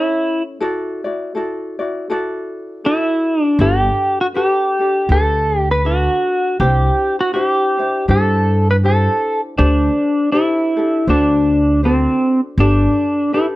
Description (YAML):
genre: Hawaiian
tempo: 80 BPM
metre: 4/4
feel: swing 58% on 8ths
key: G major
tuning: A4 = 436 Hz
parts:
  - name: pedal steel guitar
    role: melody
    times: 0.0-13.5 s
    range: C4 to B4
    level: -15 LUFS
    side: equal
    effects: none
  - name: ukulele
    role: accompaniment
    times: 0.0-13.6 s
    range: C#4 to D5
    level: -23 LUFS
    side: left 2 dB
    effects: none
  - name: upright bass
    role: bass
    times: 3.6-12.9 s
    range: G1 to G2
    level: -16 LUFS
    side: equal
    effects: none
room: light reverb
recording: dry, close 1970s-style studio recording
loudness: -14 LUFS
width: side -17 dB against mid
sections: 0.0-13.6 A section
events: none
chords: 0.0 A; 0.6 Dadd9; 3.6 Gadd9; 6.6 Cadd9; 9.6 D7sus4; 11.1 D7; 12.6 Gadd9